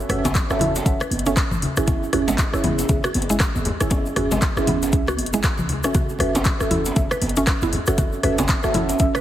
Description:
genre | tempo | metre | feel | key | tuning
afro house | 118 BPM | 4/4 | swing 60% on 16ths | F# minor | A4 = 440 Hz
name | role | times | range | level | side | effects
deep mellow chord stab | stabs | 0.0-9.1 s | C#4 to E5 | -25 LUFS | right 2 dB | chorus, phaser, sidechain pumping, ping-pong delay
warm 808-style bass | bass | 0.0-9.1 s | F#1 to C#2 | -27 LUFS | equal | tube saturation, sidechain pumping
egg shaker | percussion | 0.0-9.2 s | none | -34 LUFS | left 2 dB | none
mallet-like synth pluck | arpeggios | 0.1-9.2 s | G#3 to B4 | -27 LUFS | equal | chorus, sidechain pumping, ping-pong delay
afro-pop drum kit | drums | 0.1-9.2 s | handclaps, hi-hat, rim click, toms | -25 LUFS | left 1 dB | none
congas | percussion | 0.1-9.2 s | none | -28 LUFS | left 1 dB | none
djembe | percussion | 0.2-9.0 s | none | -29 LUFS | right 1 dB | none
electronic kick drum | drums | 0.3-9.1 s | none | -21 LUFS | equal | none
room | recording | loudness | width
moderate concert hall reverb, RT60 1.8 s | heavily compressed radio sound | -18 LUFS | side -12 dB against mid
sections
0.0-9.2 A section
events
none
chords
0.0 F#m7

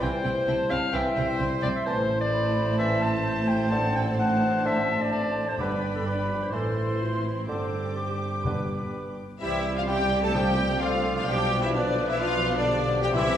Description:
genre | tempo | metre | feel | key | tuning
classical, dramatic, fast romantic movement for symphony orchestra | 129 BPM | 4/4 | straight | unclear | A4 = 442 Hz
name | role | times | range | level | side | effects
rich studio violin section | melody | 0.0-13.4 s | D5 to D6 | -34 LUFS | left 3 dB | none
hollow concert flute | second line | 0.0-13.4 s | D5 to D6 | -35 LUFS | left 1 dB | none
mellow clarinet | second line | 0.0-13.4 s | E4 to A5 | -30 LUFS | equal | none
rich symphonic violin section | second line | 0.0-13.4 s | D4 to A4 | -38 LUFS | left 2 dB | none
warm cor anglais | second line | 0.0-13.4 s | B4 to A5 | -39 LUFS | right 2 dB | none
warm bassoon | accompaniment | 0.0-13.4 s | D3 to G3 | -34 LUFS | equal | none
warm symphonic viola section | accompaniment | 0.0-13.4 s | E3 to G4 | -38 LUFS | right 1 dB | none
dark French horn section | sustained chords | 0.0-13.4 s | D3 to E4 | -33 LUFS | left 2 dB | none
clear trumpet section | stabs | 0.0-13.4 s | D4 to D5 | -33 LUFS | left 1 dB | none
dark symphonic cello section | bass | 0.0-13.4 s | G2 to C3 | -32 LUFS | right 2 dB | none
rich symphonic double bass section | bass | 0.0-13.4 s | G1 to C2 | -32 LUFS | right 2 dB | none
timpani | percussion | 5.6-13.4 s | G2 to C3 | -34 LUFS | equal | none
clear trombone section | sustained chords | 9.4-13.3 s | E3 to D4 | -38 LUFS | right 2 dB | none
room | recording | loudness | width
wet recital hall reverb, RT60 1.5 s | recorded in a church or concert hall | -23 LUFS | side -10 dB against mid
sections
0.0-9.4 A section; 9.4-13.4 B section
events
none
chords
0.0 C; 1.9 Am; 3.7 D7/A; 5.6 G; 6.5 Am; 7.5 Gsus4; 8.5 G; 9.4 C; 10.4 Dm7/C; 11.3 G7/B

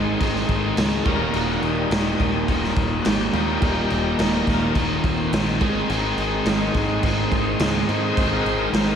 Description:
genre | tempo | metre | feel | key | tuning
classic rock | 106 BPM | 4/4 | straight | Eb major | A4 = 441 Hz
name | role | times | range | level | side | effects
bright tonewheel organ | sustained chords | 0.0-9.0 s | G3 to C5 | -27 LUFS | equal | overdrive, fast rotary speaker
crunchy overdriven guitar | riff | 0.0-9.0 s | Eb2 to Ab3 | -28 LUFS | right 9 dB | phaser, slapback echo
overdriven semi-hollow guitar | riff | 0.0-9.0 s | Eb2 to Eb4 | -27 LUFS | equal | spring reverb, slapback echo
tight distorted guitar | riff | 0.0-9.0 s | Eb2 to Ab3 | -27 LUFS | left 10 dB | distortion, slapback echo
picked electric bass | bass | 0.0-9.0 s | Eb1 to Ab2 | -28 LUFS | equal | none
raw garage drum kit | drums | 0.2-8.9 s | crash cymbal, kick drum, snare drum | -23 LUFS | equal | none
room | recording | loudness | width
moderate lush hall reverb, RT60 2.0 s | big arena sound | -19 LUFS | side -8 dB against mid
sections
0.0-9.0 A section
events
tonewheel organ solo 0.0-9.0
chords
0.0 Ab; 1.1 Eb; 5.6 Ab

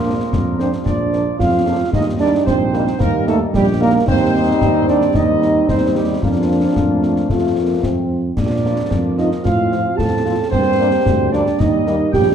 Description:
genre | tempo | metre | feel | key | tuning
military-style march for wind band | 112 BPM | 2/4 | straight | Bb major | A4 = 440 Hz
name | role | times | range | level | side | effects
warm trumpet section | melody | 0.0-12.3 s | F4 to A5 | -28 LUFS | equal | none
clear euphonium | second line | 0.0-12.3 s | F3 to A4 | -18 LUFS | right 4 dB | none
warm French horn section | accompaniment | 0.0-12.0 s | F3 to F4 | -22 LUFS | left 4 dB | none
warm trombone section | sustained chords | 0.0-12.3 s | F3 to Eb4 | -25 LUFS | right 1 dB | none
mellow tuba | bass | 0.0-12.3 s | Bb1 to Bb2 | -20 LUFS | right 2 dB | none
concert snare drum, concert bass drum and clash cymbals | drums | 0.3-12.3 s | none | -21 LUFS | left 2 dB | none
room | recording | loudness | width
wet large studio reverb, RT60 1.3 s | dark, warm production | -14 LUFS | side -8 dB against mid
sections
0.0-12.3 A section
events
none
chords
0.0 Bb; 1.9 Eb; 4.1 Cm/Eb; 6.2 Bb/F; 7.3 F; 8.4 Bb; 9.4 F/A; 10.5 Gm; 11.6 Eb

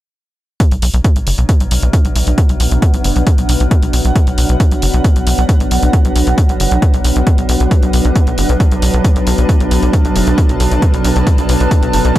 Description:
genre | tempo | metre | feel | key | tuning
driving peak-time techno | 135 BPM | 4/4 | straight | B minor | A4 = 444 Hz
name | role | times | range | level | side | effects
metallic inharmonic drone | drone | 1.0-12.2 s | B2 to F#3 | -20 LUFS | left 1 dB | chorus, built-in reverb, sidechain pumping
electronic hi-hat | drums | 0.6-12.2 s | none | -23 LUFS | equal | overdrive, sidechain pumping on hats
electronic kick drum | drums | 0.6-12.2 s | none | -12 LUFS | equal | none
granular cloud pad | texture | 1.5-12.2 s | D4 to A5 | -20 LUFS | right 2 dB | built-in reverb, sidechain pumping
tight sequencer bass | bass | 0.7-12.1 s | F#1 to B1 | -14 LUFS | equal | sidechain pumping
room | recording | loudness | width
little or no reverb | dry, gritty hardware recording, transformer saturation | -10 LUFS | side -14 dB against mid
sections
0.6-12.2 A section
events
none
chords
0.6 Bm

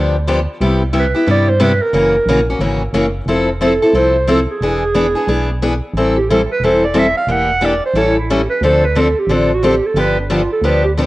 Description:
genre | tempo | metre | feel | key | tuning
acoustic string swing (jazz manouche) | 180 BPM | 4/4 | swing 61% on 8ths | A minor | A4 = 440 Hz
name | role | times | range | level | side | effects
picked steel-string acoustic guitar | accompaniment | 0.0-11.1 s | C3 to A4 | -15 LUFS | left 2 dB | cassette tape
organ-like FM bass | bass | 0.0-11.1 s | E1 to G2 | -19 LUFS | equal | none
mellow clarinet | melody | 1.0-10.9 s | D4 to F#5 | -16 LUFS | right 2 dB | cassette tape
room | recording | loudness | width
moderate spring reverb, RT60 2.1 s | home recording on cassette | -12 LUFS | side -18 dB against mid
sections
0.0-5.9 A section; 5.9-11.1 B section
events
clarinet solo 5.9-11.1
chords
0.0 G7; 0.6 Cmaj7; 1.9 F#9; 3.3 Fmaj7; 4.6 E7; 5.9 Am7; 7.3 Em7b5; 8.0 A7; 8.6 Dm7; 10.0 G7

